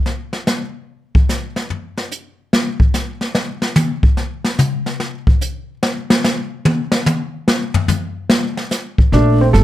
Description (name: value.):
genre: jazz piano trio.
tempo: 146 BPM.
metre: 4/4.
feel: swing 65% on 8ths.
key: unclear.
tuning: A4 = 439 Hz.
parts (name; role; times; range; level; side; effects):
jazz brush drum kit; drums; 0.1-9.6 s; brushed snare drum, hi-hat, kick drum, snare drum, toms; -15 LUFS; left 1 dB; none.
warm upright piano; melody; 9.1-9.6 s; A3 to A4; -14 LUFS; right 1 dB; plate reverb.
upright bass; bass; 9.1-9.6 s; G1 to Bb1; -11 LUFS; right 1 dB; none.
room: light reverb.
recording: none.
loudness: -15 LUFS.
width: side -14 dB against mid.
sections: 0.0-9.1 A section.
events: drum solo 0.0-9.1.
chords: 0.0 N.C.; 9.1 Bbmaj7.